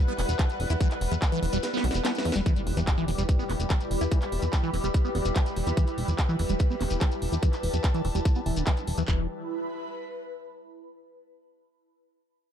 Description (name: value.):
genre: psychedelic trance.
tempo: 145 BPM.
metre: 4/4.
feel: straight.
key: E minor.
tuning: A4 = 440 Hz.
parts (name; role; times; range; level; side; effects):
pulsing gated texture; sustained chords; 0.0-9.1 s; G3 to B4; -35 LUFS; left 1 dB; chorus, built-in reverb, sidechain pumping.
airy breathy pad; texture; 0.0-10.7 s; E4 to B5; -36 LUFS; equal; chorus, phaser, sidechain pumping.
liquid acid bass; riff; 0.1-9.3 s; D3 to E4; -32 LUFS; moving between left 6 dB and right 5 dB; phaser, auto-pan, sidechain pumping, digital delay.
shekere; percussion; 0.1-9.1 s; none; -42 LUFS; left 5 dB; none.
plucky analog bass; bass; 0.2-9.3 s; E1 to E2; -28 LUFS; equal; tube saturation.
drum and bass drum kit; drums; 0.2-9.1 s; handclaps, hi-hat, snare drum; -34 LUFS; equal; none.
drum and bass drum kit; drums; 0.4-9.2 s; handclaps, kick drum; -24 LUFS; equal; none.
impact; sound effects; 2.5-4.1 s; none; -38 LUFS; equal; none.
room: light reverb.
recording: dark, warm production.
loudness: -24 LUFS.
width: side -9 dB against mid.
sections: 0.0-2.5 A section; 2.5-9.1 B section; 9.1-10.7 C section.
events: drop 0.0-2.5; kick drops out 1.6-2.5; drum fill 1.6-2.5; impact 2.5-4.1; filter sweep on analog synth bass 2.5-9.1; filter sweep on acid bass 2.5-9.1.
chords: 0.0 E5.